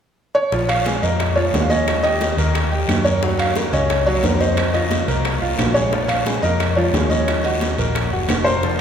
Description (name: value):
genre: latin, salsa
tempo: 178 BPM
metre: 4/4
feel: straight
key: Bb minor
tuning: A4 = 441 Hz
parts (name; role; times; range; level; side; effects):
- felt-muted upright piano; melody; 0.3-8.8 s; C5 to F5; -21 LUFS; right 1 dB; none
- bright upright piano; accompaniment; 0.5-8.8 s; F3 to G5; -23 LUFS; equal; none
- vintage muted fingered electric bass; bass; 0.5-8.8 s; F1 to Gb2; -21 LUFS; equal; none
- bongos; percussion; 0.5-8.8 s; none; -28 LUFS; left 4 dB; none
- congas; percussion; 0.5-8.8 s; none; -28 LUFS; right 3 dB; none
- guiro; percussion; 0.5-8.8 s; none; -33 LUFS; left 5 dB; none
- claves; percussion; 0.7-8.5 s; none; -35 LUFS; left 5 dB; none
- timbales; percussion; 0.7-8.5 s; none; -26 LUFS; right 3 dB; none
room: wet cathedral reverb, RT60 4.9 s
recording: recorded in a church or concert hall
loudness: -16 LUFS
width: side -8 dB against mid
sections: 0.5-8.8 A section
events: none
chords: 0.0 N.C.; 0.5 Bbm7; 1.9 Eb7; 3.2 Gbmaj7; 4.6 F7sus4; 5.9 Bbm7; 7.3 Ebm7